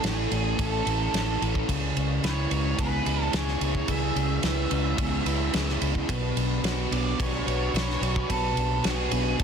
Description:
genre	rock, shoegaze and dream pop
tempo	109 BPM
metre	4/4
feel	straight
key	unclear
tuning	A4 = 441 Hz
part	octave-fuzz lead guitar	melody	0.0-9.4 s	G#4 to E5	-33 LUFS	right 4 dB	distortion, slapback echo
part	picked twelve-string acoustic guitar	arpeggios	0.0-9.4 s	G#4 to C#5	-36 LUFS	left 10 dB	analog chorus, slapback echo
part	fuzz guitar	riff	0.0-9.4 s	A2 to C#5	-32 LUFS	left 12 dB	distortion, ensemble chorus
part	overdriven semi-hollow guitar	riff	0.0-9.4 s	B2 to C#5	-31 LUFS	right 12 dB	reverse reverb
part	vintage muted fingered electric bass	bass	0.0-9.4 s	A1 to C#2	-29 LUFS	equal	none
part	loose indie drum kit	drums	0.0-9.4 s	kick drum, ride cymbal, snare drum	-30 LUFS	right 1 dB	none
room	little or no reverb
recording	dense, heavily limited modern master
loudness	-24 LUFS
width	side -7 dB against mid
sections	0.0-9.4 A section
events	none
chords	0.0 A; 1.7 C#m7; 6.1 Bmadd9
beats	0.03 0.58 1.13 | 1.68 2.23 2.78 3.33 | 3.88 4.44 4.99 5.54 | 6.09 6.64 7.19 7.74 | 8.29 8.85 9.40

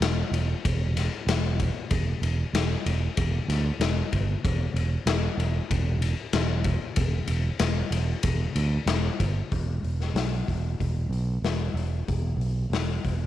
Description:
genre	psychedelic rock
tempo	94 BPM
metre	4/4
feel	straight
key	E minor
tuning	A4 = 442 Hz
part	overdriven fingered electric bass	bass	0.0-13.3 s	E1 to D2	-26 LUFS	right 1 dB	none
part	raw garage drum kit	drums	0.0-13.2 s	hi-hat, kick drum, ride cymbal, snare drum	-28 LUFS	left 4 dB	none
room	little or no reverb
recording	1960s-style stereo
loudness	-24 LUFS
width	side -13 dB against mid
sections	0.0-9.5 A section; 9.5-13.3 B section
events	none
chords	none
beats	0.01 0.64 1.27 | 1.91 2.54 3.17 3.80 | 4.44 5.07 5.71 6.34 | 6.97 7.61 8.25 8.88 | 9.52 10.16 10.80 11.44 | 12.08 12.72

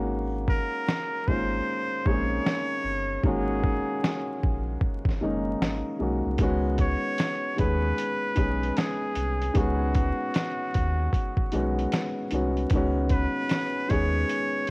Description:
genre	lo-fi hip hop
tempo	76 BPM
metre	4/4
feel	swing 66% on 16ths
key	unclear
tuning	A4 = 440 Hz
part	warm upright piano	accompaniment	0.0-14.7 s	D#3 to G#4	-28 LUFS	left 1 dB	cassette tape
part	sub bass with octave	bass	0.0-14.2 s	F#1 to D#2	-29 LUFS	equal	tube saturation
part	trumpet with straight mute	melody	0.5-14.7 s	F#4 to C#5	-30 LUFS	equal	none
part	lo-fi sampler-style drum kit	drums	0.5-14.7 s	hi-hat, kick drum, snare drum	-26 LUFS	equal	none
room	light reverb, small room ambience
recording	worn, warbling old tape, cassette tape, vinyl crackle, warbly pitch drift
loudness	-24 LUFS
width	side -28 dB against mid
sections	0.0-14.7 A section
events	break 0.0-6.4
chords	0.0 G#9sus4; 6.4 C#9sus4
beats	| 0.08 0.87 1.66 2.45 | 3.24 4.03 4.82 5.61 | 6.39 7.18 7.97 8.76 | 9.55 10.34 11.13 11.92 | 12.71 13.50 14.29

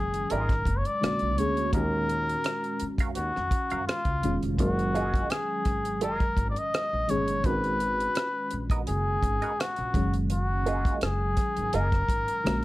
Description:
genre	R&B, neo-soul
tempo	84 BPM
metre	4/4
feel	swing 53% on 16ths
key	F# major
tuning	A4 = 439 Hz
part	trumpet with cup mute	melody	0.0-12.6 s	E#4 to D#5	-29 LUFS	left 1 dB	none
part	FM electric piano with soft pad layer	accompaniment	0.0-12.6 s	A#2 to G#4	-32 LUFS	equal	chorus, tremolo
part	upright bass	bass	0.0-12.6 s	E1 to F#2	-30 LUFS	equal	none
part	damped 70s drum kit	drums	0.1-12.6 s	hi-hat, kick drum, rim click	-29 LUFS	equal	none
part	semi-hollow electric guitar	second line	0.3-11.9 s	A#3 to E#5	-32 LUFS	right 5 dB	wah
room	light reverb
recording	none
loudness	-25 LUFS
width	side -18 dB against mid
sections	0.0-12.6 A section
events	none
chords	0.0 F#69; 1.0 A#7alt; 1.7 D#m9; 4.6 F#69; 7.4 C#13sus4/G#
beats	0.30 1.01 | 1.73 2.44 3.16 3.87 | 4.59 5.30 6.01 6.73 | 7.44 8.16 8.87 9.59 | 10.30 11.02 11.73 12.44

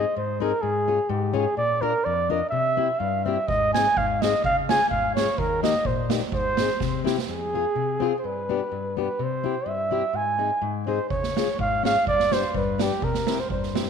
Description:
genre	alpine folk, alpine dance band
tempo	126 BPM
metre	2/4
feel	swing 53% on 8ths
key	Ab major, F harmonic minor from 7.3 s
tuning	A4 = 438 Hz
part	mellow flugelhorn	melody	0.0-13.8 s	G4 to Ab5	-24 LUFS	right 2 dB	slapback echo
part	fingerpicked plugged-in steel-string acoustic guitar	accompaniment	0.0-13.9 s	F2 to Bb4	-27 LUFS	left 8 dB	none
part	street-band drum kit	drums	3.5-7.3, 11.1-13.9 s	hi-hat, kick drum, snare drum	-28 LUFS	right 6 dB	none
room	moderate echo chamber reverb, RT60 2.1 s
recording	1960s-style stereo with parts hard left and right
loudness	-22 LUFS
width	side -6 dB against mid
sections	0.0-7.3 A section; 7.3-13.9 B section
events	drum fill 6.8-7.3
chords	0.0 Ab; 0.6 Db/Ab; 1.6 Bb; 2.5 C; 3.5 Ab; 4.4 Db; 5.4 Eb; 6.3 Ab; 6.8 C; 7.3 Fm; 8.2 G; 9.2 C; 10.1 Ab; 11.1 Db; 12.1 G; 13.0 C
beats	0.16 | 0.63 1.10 | 1.57 2.04 | 2.52 3.00 | 3.48 3.96 | 4.43 4.90 | 5.37 5.84 | 6.31 6.80 | 7.28 7.76 | 8.24 8.72 | 9.19 9.66 | 10.14 10.62 | 11.11 11.59 | 12.07 12.55 | 13.03 13.50

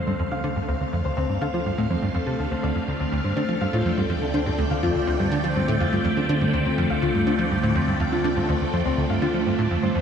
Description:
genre	ambient, sequencer-driven space music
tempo	123 BPM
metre	4/4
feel	straight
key	D minor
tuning	A4 = 440 Hz
part	phased string machine	sustained chords	0.0-10.0 s	D3 to G5	-26 LUFS	right 1 dB	ensemble chorus, phaser, shimmer reverb
part	Celtic harp	arpeggios	0.0-10.0 s	C4 to F5	-28 LUFS	left 3 dB	auto-pan, tape echo, shimmer reverb
part	analog drone	bass	0.0-10.0 s	D2	-33 LUFS	equal	chorus
part	plucky analog bass	riff	0.1-10.0 s	D2 to F3	-24 LUFS	right 1 dB	wide subtle chorus, tape echo
room	wet lush hall reverb, RT60 2.6 s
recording	none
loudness	-21 LUFS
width	side -7 dB against mid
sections	0.0-10.0 A section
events	fade-in on string machine 0.0-10.0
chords	0.0 Dm7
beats	0.07 0.56 | 1.05 1.53 2.02 2.51 | 3.00 3.48 3.97 4.46 | 4.95 5.44 5.92 6.41 | 6.90 7.39 7.88 8.36 | 8.85 9.34 9.83

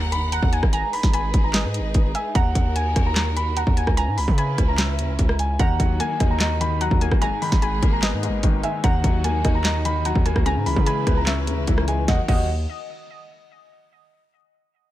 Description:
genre	hip hop, trap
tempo	148 BPM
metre	4/4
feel	half-time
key	Eb phrygian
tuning	A4 = 441 Hz
part	dark grand piano	melody	0.0-12.5 s	Gb5 to Cb6	-28 LUFS	right 1 dB	none
part	warm studio string section	sustained chords	0.0-12.3 s	Db3 to Gb5	-32 LUFS	equal	none
part	distorted 808-style bass	bass	0.0-12.7 s	Ab1 to Db3	-23 LUFS	equal	distortion
part	impact	sound effects	0.0-0.7 s	none	-40 LUFS	equal	none
part	trap drum kit	drums	0.1-12.4 s	crash cymbal, handclaps, hi-hat, kick drum, rim click, snare drum	-21 LUFS	equal	none
part	warbly dusty pluck	second line	0.3-12.5 s	Eb5 to Bb5	-31 LUFS	right 1 dB	chorus, ping-pong delay
part	felt-muted upright piano	accompaniment	5.6-12.5 s	Ab2 to Eb5	-27 LUFS	left 4 dB	none
room	digital ambience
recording	none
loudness	-18 LUFS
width	side -14 dB against mid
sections	0.0-12.1 A section; 12.1-13.7 B section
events	impact 0.0-0.7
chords	0.0 Ebm; 0.7 Abmadd9; 2.4 Ebm; 4.0 Dbm7; 5.6 Ebm; 7.2 Abmadd9; 8.8 Ebm; 10.5 Dbm7; 12.1 Ebm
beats	0.32 | 0.73 1.14 1.54 1.95 | 2.35 2.76 3.16 3.57 | 3.97 4.38 4.78 5.19 | 5.59 6.00 6.41 6.81 | 7.22 7.62 8.03 8.43 | 8.84 9.24 9.65 10.05 | 10.46 10.87 11.27 11.68 | 12.08 12.49

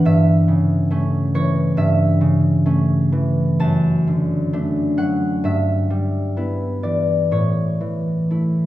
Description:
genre	classical, solo harp piece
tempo	60-70 BPM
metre	4/4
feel	rubato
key	unclear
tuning	A4 = 438 Hz
part	concert harp	solo	0.0-8.7 s	F#2 to A5	-16 LUFS	equal	none
room	wet recital hall reverb, RT60 1.7 s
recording	recorded in a church or concert hall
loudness	-16 LUFS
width	side -14 dB against mid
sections	0.0-8.7 A section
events	none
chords	0.0 A7/G; 3.6 D/F#; 5.4 Em/G; 7.3 A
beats	| 0.04 0.92 1.78 2.66 | 3.62 4.54 5.44 6.37 | 7.32 8.31

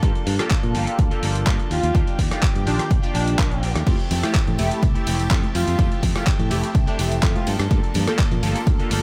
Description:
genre	filtered disco house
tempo	125 BPM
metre	4/4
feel	straight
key	F major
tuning	A4 = 440 Hz
part	funky polysynth comp	accompaniment	0.0-9.0 s	Eb3 to Bb4	-30 LUFS	equal	chorus, phaser, sidechain pumping
part	phased string machine	sustained chords	0.0-9.0 s	Bb3 to A5	-38 LUFS	equal	none
part	clean electric guitar	riff	0.0-9.0 s	E3 to A4	-33 LUFS	equal	spring reverb, sidechain pumping
part	fingered electric bass	bass	0.0-9.0 s	F1 to Bb2	-26 LUFS	equal	sidechain pumping
part	dusty soul sampler-style drum kit	drums	0.0-9.0 s	crash cymbal, handclaps, hi-hat, ride cymbal, rim click	-31 LUFS	equal	overdrive, sidechain pumping on hats, sidechain pumping on cymbals
part	electronic kick drum	drums	0.0-8.8 s	none	-22 LUFS	equal	none
part	warm horn section	melody	1.7-7.5 s	D4 to F4	-30 LUFS	equal	sidechain pumping
part	tambourine and congas	percussion	3.9-9.0 s	none	-32 LUFS	equal	sidechain pumping on perc
room	digital ambience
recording	none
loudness	-20 LUFS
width	mono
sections	0.0-9.0 A section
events	none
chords	0.0 Gm9; 1.7 Ebmaj9; 3.9 Fmaj9; 7.5 Gm9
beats	| 0.03 0.51 0.99 1.47 | 1.95 2.43 2.91 3.39 | 3.87 4.35 4.83 5.31 | 5.79 6.27 6.75 7.23 | 7.71 8.19 8.67

